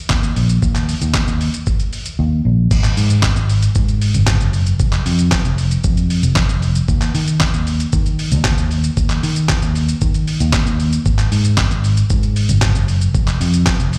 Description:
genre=dance-pop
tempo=115 BPM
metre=4/4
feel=straight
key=unclear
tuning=A4 = 440 Hz
part: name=vintage muted fingered electric bass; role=bass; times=0.1-14.0 s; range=F1 to Eb3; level=-18 LUFS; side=equal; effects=sidechain pumping
part: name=dusty soul sampler-style drum kit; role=drums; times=0.1-14.0 s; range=crash cymbal, handclaps, hi-hat, kick drum, shaker, snare drum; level=-20 LUFS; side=equal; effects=none
room=little or no reverb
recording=live gig heard through the venue's PA, recital hall reverb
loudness=-16 LUFS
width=mono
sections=0.0-2.7 A section; 2.7-14.0 B section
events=silent gap 2.2-2.7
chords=none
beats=0.10 | 0.62 1.15 1.67 2.19 | 2.71 3.23 3.75 4.28 | 4.80 5.32 5.84 6.36 | 6.88 7.41 7.93 8.45 | 8.97 9.49 10.02 10.54 | 11.06 11.58 12.10 12.62 | 13.14 13.67

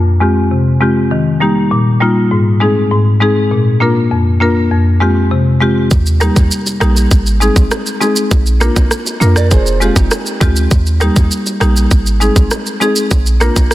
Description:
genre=dancehall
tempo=100 BPM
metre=4/4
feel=straight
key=Eb major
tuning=A4 = 445 Hz
part: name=marimba with medium mallets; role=accompaniment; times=0.0-13.5 s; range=F2 to Bb4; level=-12 LUFS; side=left 1 dB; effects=low-pass filter
part: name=clean 808-style bass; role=bass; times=5.9-13.7 s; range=F1 to F2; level=-13 LUFS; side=equal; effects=none
part: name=island pop drum kit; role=drums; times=5.9-13.7 s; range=kick drum, rim click, shaker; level=-14 LUFS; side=right 1 dB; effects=soft clipping on snare
part: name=bongos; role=percussion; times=5.9-13.7 s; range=none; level=-29 LUFS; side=right 1 dB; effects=none
part: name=nylon-string guitar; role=arpeggios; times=9.4-10.7 s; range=Eb4 to D5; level=-20 LUFS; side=right 5 dB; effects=none
room=light reverb, small room ambience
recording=dense, heavily limited modern master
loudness=-10 LUFS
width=side -15 dB against mid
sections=0.0-5.9 A section; 5.9-13.7 B section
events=none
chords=0.0 Fmadd9; 1.1 Eb; 2.3 Ab; 3.5 Bb; 4.7 Fmadd9; 5.9 Eb; 7.1 Ab; 8.3 Bb; 9.5 Fmadd9; 10.7 Eb; 11.9 Ab; 13.1 Bb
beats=0.51 | 1.11 1.71 2.31 2.91 | 3.51 4.11 4.71 5.31 | 5.91 6.51 7.11 7.71 | 8.31 8.91 9.51 10.11 | 10.71 11.31 11.91 12.51 | 13.11 13.71

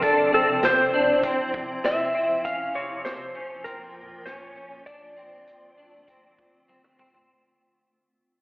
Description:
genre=dream pop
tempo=99 BPM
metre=4/4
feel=straight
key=F major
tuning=A4 = 440 Hz
part: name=electric slide guitar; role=melody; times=0.0-6.6 s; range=A4 to F5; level=-23 LUFS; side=equal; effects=digital delay
part: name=granular cloud pad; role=sustained chords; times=0.0-7.3 s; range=F2 to F4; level=-35 LUFS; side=equal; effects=built-in reverb
part: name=clean electric guitar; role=arpeggios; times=0.0-7.3 s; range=C3 to D4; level=-27 LUFS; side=left 1 dB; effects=ensemble chorus, digital delay
part: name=vintage drum kit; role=drums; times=0.0-7.3 s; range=hi-hat, kick drum, snare drum, toms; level=-31 LUFS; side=equal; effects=none
room=wet scoring stage reverb, RT60 2.1 s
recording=played on a big sound system in a bare room, large studio reverb, telephone sound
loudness=-21 LUFS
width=side -24 dB against mid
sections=0.0-7.3 A section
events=fade-out 0.0-7.3; drum fill 6.7-7.3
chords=0.0 F5; 2.4 Bbm/F; 4.9 F6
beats=| 0.02 0.63 1.23 1.84 | 2.44 3.05 3.66 4.26 | 4.87 5.47 6.08 6.69

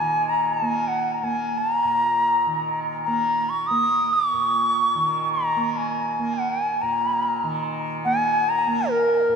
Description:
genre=indian classical, Hindustani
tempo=free time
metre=none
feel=none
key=unclear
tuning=A4 = 441 Hz
part: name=bright reedy bansuri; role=melody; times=0.0-9.4 s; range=Bb4 to Eb6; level=-20 LUFS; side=equal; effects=analog delay
part: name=tanpura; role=drone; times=0.0-9.4 s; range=Bb2 to Bb3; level=-30 LUFS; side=right 3 dB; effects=none
room=wet lush hall reverb, RT60 2.6 s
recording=dreamy mix soaked in reverb, nothing above 10.7 kHz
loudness=-20 LUFS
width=side -6 dB against mid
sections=0.0-9.4 A section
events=none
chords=none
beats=free time

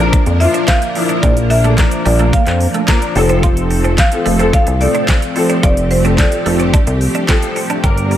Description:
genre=dance-pop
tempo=109 BPM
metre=4/4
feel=straight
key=unclear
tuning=A4 = 437 Hz
part: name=marimba with hard mallets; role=melody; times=0.0-6.7 s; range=C5 to F5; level=-20 LUFS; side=equal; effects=analog delay
part: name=clear concert grand piano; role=accompaniment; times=0.0-8.2 s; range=F3 to Bb4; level=-19 LUFS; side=left 3 dB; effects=ensemble chorus, sidechain pumping
part: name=string machine, cellos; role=sustained chords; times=0.0-8.2 s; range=F3 to Bb4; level=-20 LUFS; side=equal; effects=ensemble chorus, sidechain pumping
part: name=twelve-string electric guitar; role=riff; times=0.0-8.1 s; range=G3 to G4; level=-24 LUFS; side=right 5 dB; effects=ensemble chorus
part: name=chorused synth bass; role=bass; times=0.0-8.2 s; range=F1 to F2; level=-14 LUFS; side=equal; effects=sidechain pumping
part: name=pop drum kit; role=drums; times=0.1-8.2 s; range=handclaps, hi-hat, kick drum, snare drum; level=-15 LUFS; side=equal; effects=none
room=light reverb, digital ambience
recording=none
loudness=-11 LUFS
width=side -11 dB against mid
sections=0.0-8.2 A section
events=none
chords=0.0 Bb; 3.2 F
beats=0.13 0.68 | 1.23 1.78 2.33 2.88 | 3.43 3.98 4.53 5.08 | 5.63 6.18 6.74 7.29 | 7.84

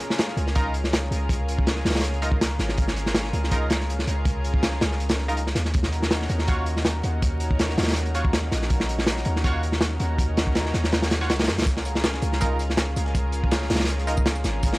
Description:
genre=drum and bass, jungle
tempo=162 BPM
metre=4/4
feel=swing 53% on 16ths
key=unclear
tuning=A4 = 441 Hz
part: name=lush unison pad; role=sustained chords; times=0.0-14.8 s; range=Db4 to Bb4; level=-31 LUFS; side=equal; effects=chorus, vintage 12-bit sampler grit
part: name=crunchy breakbeat drum kit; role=drums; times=0.0-14.8 s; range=hi-hat, kick drum, snare drum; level=-24 LUFS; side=equal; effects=none
part: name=warm 808-style bass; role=bass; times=0.4-14.8 s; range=Ab1 to Gb2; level=-26 LUFS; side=equal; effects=tube saturation
part: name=band-passed chord stab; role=stabs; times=0.6-14.2 s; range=Eb4 to Db5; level=-32 LUFS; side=right 1 dB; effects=chorus, dub echo
part: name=breakbeat sampler-style drum kit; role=drums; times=11.7-14.8 s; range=hi-hat, snare drum, tambourine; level=-37 LUFS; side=equal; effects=none
room=small room ambience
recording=dry, gritty hardware recording, vinyl crackle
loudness=-21 LUFS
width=side -21 dB against mid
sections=0.0-14.8 A section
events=none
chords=0.0 Db6; 5.7 Ebm7; 11.7 Db6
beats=0.18 0.56 0.93 | 1.30 1.67 2.04 2.41 | 2.78 3.15 3.52 3.89 | 4.26 4.63 5.00 5.37 | 5.74 6.11 6.48 6.85 | 7.22 7.59 7.96 8.33 | 8.70 9.07 9.44 9.81 | 10.19 10.55 10.93 11.30 | 11.67 12.04 12.41 12.78 | 13.15 13.52 13.89 14.26 | 14.63

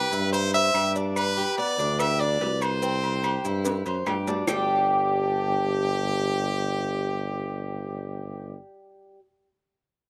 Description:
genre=latin, Cuban son and guajira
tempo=145 BPM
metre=4/4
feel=straight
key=G major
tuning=A4 = 439 Hz
part: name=brilliant trumpet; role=melody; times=0.0-8.6 s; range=G4 to E5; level=-30 LUFS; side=equal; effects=none
part: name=Cuban tres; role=arpeggios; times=0.0-9.2 s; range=G3 to C5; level=-31 LUFS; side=equal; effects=slapback echo
part: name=warm tuba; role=bass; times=0.0-8.6 s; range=G1 to G2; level=-31 LUFS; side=equal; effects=none
part: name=cowbell and bongos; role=percussion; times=0.1-4.6 s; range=none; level=-38 LUFS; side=equal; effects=none
part: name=maracas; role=percussion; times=0.1-4.6 s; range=none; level=-41 LUFS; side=equal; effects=none
part: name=agogo bells and timbales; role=percussion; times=0.3-4.6 s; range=none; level=-34 LUFS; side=equal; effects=slapback echo
part: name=claves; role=percussion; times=0.7-4.6 s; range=none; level=-41 LUFS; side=equal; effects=slapback echo
room=little or no reverb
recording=recorded outdoors, with no room sound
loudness=-25 LUFS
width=mono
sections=0.0-4.5 A section; 4.5-7.8 B section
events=drum fill 3.7-4.5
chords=0.0 C; 1.2 G; 2.8 C; 4.5 G5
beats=0.33 0.75 | 1.16 1.58 2.00 2.41 | 2.83 3.24 3.66 4.07 | 4.49 4.90 5.32 5.73 | 6.14 6.56 6.97 7.38

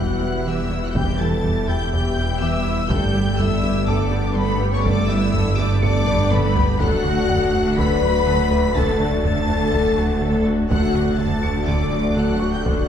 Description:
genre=cinematic, hybrid orchestral and electronic film score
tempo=123 BPM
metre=4/4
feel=straight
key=unclear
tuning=A4 = 441 Hz
part: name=rich symphonic violin section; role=melody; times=0.0-12.9 s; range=B5 to B6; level=-29 LUFS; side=left 2 dB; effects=none
part: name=warm symphonic violin section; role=second line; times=0.0-12.9 s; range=B4 to B5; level=-30 LUFS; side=left 3 dB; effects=none
part: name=clear symphonic viola section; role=accompaniment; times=0.0-12.9 s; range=E3 to A4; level=-28 LUFS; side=equal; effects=none
part: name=chorused pulse-width pad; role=sustained chords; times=0.0-12.9 s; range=G3 to E5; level=-27 LUFS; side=left 1 dB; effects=none
part: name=warm French horn section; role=sustained chords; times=0.0-12.9 s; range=B3 to B4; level=-26 LUFS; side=left 4 dB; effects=none
part: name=warbly dusty pluck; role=arpeggios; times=0.0-12.8 s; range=D3 to G4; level=-32 LUFS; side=equal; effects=none
part: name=rubbery square bass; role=riff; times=0.0-12.8 s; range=D2 to G3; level=-26 LUFS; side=right 2 dB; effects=none
part: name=rich studio cello section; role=bass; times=0.0-12.9 s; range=D2 to G2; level=-26 LUFS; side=right 1 dB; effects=none
part: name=rich symphonic double bass section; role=bass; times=0.0-12.9 s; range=E1 to D2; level=-27 LUFS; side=right 2 dB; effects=none
part: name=saturated sub bass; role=bass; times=0.0-12.9 s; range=D1 to G1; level=-29 LUFS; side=equal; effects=none
part: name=clear grand piano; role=texture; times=0.0-12.9 s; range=F#4 to C#7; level=-36 LUFS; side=left 1 dB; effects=tape echo
part: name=taiko ensemble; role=drums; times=1.0-12.9 s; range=none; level=-26 LUFS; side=equal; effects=none
room=wet scoring stage reverb, RT60 1.6 s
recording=heard from further back in the room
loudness=-17 LUFS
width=side -8 dB against mid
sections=0.0-12.9 A section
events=drum fill 6.1-6.8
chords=0.0 Em; 2.9 Gadd9; 6.8 D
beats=0.46 | 0.95 1.44 1.92 2.41 | 2.90 3.39 3.87 4.36 | 4.85 5.34 5.83 6.31 | 6.80 7.29 7.78 8.26 | 8.75 9.24 9.73 10.21 | 10.70 11.19 11.68 12.17 | 12.65

